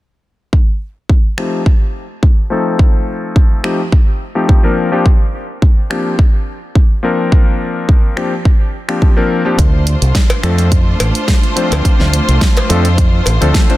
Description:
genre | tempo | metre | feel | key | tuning
nu-disco, nu disco | 106 BPM | 4/4 | swing 53% on 16ths | unclear | A4 = 440 Hz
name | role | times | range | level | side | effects
electronic kick drum | drums | 0.5-13.7 s | none | -10 LUFS | equal | none
warm electric grand piano | accompaniment | 1.4-13.8 s | F3 to C5 | -18 LUFS | left 2 dB | low-pass filter, tape echo
pop drum kit | drums | 1.4-13.8 s | finger snaps, hi-hat, snare drum | -21 LUFS | right 1 dB | none
clear symphonic string section | sustained chords | 9.6-13.8 s | A3 to C5 | -20 LUFS | equal | sidechain pumping
fingered electric bass with an envelope filter | bass | 9.6-13.5 s | A1 to F2 | -13 LUFS | equal | tube saturation
cowbell | percussion | 10.3-13.4 s | none | -22 LUFS | left 1 dB | none
room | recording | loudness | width
digital ambience | dense, heavily limited modern master | -11 LUFS | side -17 dB against mid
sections
0.5-13.8 A section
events
filter sweep on electric grand piano 0.5-13.8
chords
0.5 F9; 4.8 Bb69; 9.6 Dm7

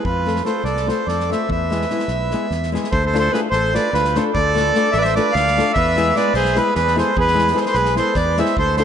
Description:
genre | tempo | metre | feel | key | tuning
balkan folk, Balkan wedding band | 296 BPM (eighths) | 7/8 | straight | E phrygian dominant | A4 = 438 Hz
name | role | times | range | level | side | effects
accordion | melody | 0.0-8.8 s | B4 to F5 | -19 LUFS | right 1 dB | tape echo
warm trumpet | second line | 0.0-8.8 s | F4 to D5 | -25 LUFS | right 2 dB | none
fingered electric bass | bass | 0.0-8.8 s | A1 to F2 | -22 LUFS | equal | none
natural country drum kit | percussion | 0.1-8.8 s | kick drum, snare drum | -29 LUFS | equal | none
nylon-string guitar | accompaniment | 0.3-8.8 s | G#3 to A4 | -23 LUFS | left 4 dB | none
room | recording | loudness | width
moderate cathedral reverb, RT60 5.1 s | dreamy mix soaked in reverb, nothing above 10.4 kHz | -16 LUFS | side -8 dB against mid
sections
0.0-2.9 A section; 2.9-8.8 B section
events
none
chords
0.1 F; 1.5 E; 2.9 Dm; 5.8 E

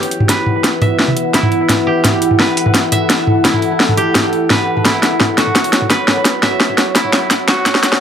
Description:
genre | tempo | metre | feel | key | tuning
half-time drum and bass | 171 BPM | 4/4 | half-time | E minor | A4 = 440 Hz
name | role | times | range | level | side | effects
deep dark ambient pad | sustained chords | 0.0-8.0 s | E4 to F#5 | -17 LUFS | equal | chorus, built-in reverb, sidechain pumping
koto | arpeggios | 0.0-8.0 s | E4 to E5 | -19 LUFS | right 1 dB | low-pass filter, analog delay
drum and bass drum kit | drums | 0.0-8.0 s | hi-hat, snare drum, toms | -13 LUFS | equal | overdrive
electronic kick drum | drums | 0.3-7.7 s | none | barely audible | none | none
room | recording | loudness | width
moderate spring reverb, RT60 1.1 s, digital ambience | echo-heavy mix, high-pass filter | -11 LUFS | side -8 dB against mid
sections
0.0-8.0 A section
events
build-up 0.0-8.0; drum fill 0.0-8.0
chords
0.0 Emadd9; 4.9 F#5

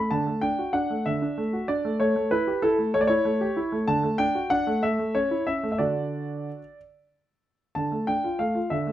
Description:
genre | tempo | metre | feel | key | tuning
classical-period piano sonatina | 63 BPM (dotted quarters) | 6/8 | straight | D major | A4 = 440 Hz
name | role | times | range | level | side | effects
warm concert grand piano | solo | 0.0-8.9 s | D3 to B5 | -23 LUFS | equal | none
room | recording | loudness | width
light reverb | none | -23 LUFS | side -12 dB against mid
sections
0.0-7.8 A section; 7.8-8.9 B section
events
none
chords
0.1 D; 2.0 A7; 3.9 D; 4.8 A; 5.8 D; 7.8 Dm

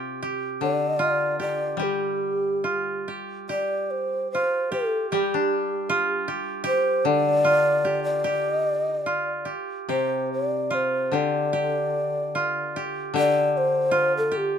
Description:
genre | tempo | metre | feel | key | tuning
japanese traditional, Japanese chamber music | 68-78 BPM | 2/4 | rubato | G suspended pentatonic | A4 = 441 Hz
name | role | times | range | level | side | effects
koto | second line | 0.0-14.6 s | F4 to G4 | -28 LUFS | right 4 dB | none
koto | accompaniment | 0.0-14.6 s | C3 to D4 | -29 LUFS | left 5 dB | none
breathy mellow long shakuhachi | melody | 0.6-14.6 s | G4 to D5 | -24 LUFS | equal | none
room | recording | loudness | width
moderate studio reverb, RT60 0.6 s | dark, warm production | -22 LUFS | side -8 dB against mid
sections
0.0-3.5 A section; 3.5-14.6 B section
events
none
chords
none

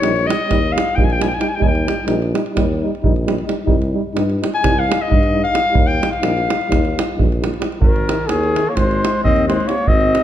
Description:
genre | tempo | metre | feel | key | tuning
balkan folk, Balkan brass band | 262 BPM (eighths) | 9/8 | straight | Eb mixolydian | A4 = 445 Hz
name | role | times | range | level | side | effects
clear clarinet | second line | 0.0-10.2 s | Eb3 to Ab5 | -20 LUFS | left 4 dB | none
mellow euphonium | accompaniment | 0.0-10.2 s | C3 to G3 | -25 LUFS | right 7 dB | none
warm euphonium | accompaniment | 0.0-10.2 s | Eb4 | -26 LUFS | left 7 dB | none
warm tuba | bass | 0.0-10.1 s | Ab1 to G2 | -22 LUFS | equal | none
davul | percussion | 0.0-10.2 s | none | -19 LUFS | right 1 dB | none
warm flugelhorn | melody | 7.8-10.2 s | Ab4 to Eb5 | -18 LUFS | equal | none
room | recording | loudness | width
moderate recital hall reverb, RT60 1.6 s | dark, warm production | -15 LUFS | side -11 dB against mid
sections
0.0-7.8 A section; 7.8-10.2 B section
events
clarinet solo 0.0-7.8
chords
0.0 Eb; 3.7 Cm; 5.7 Eb; 7.8 Ab

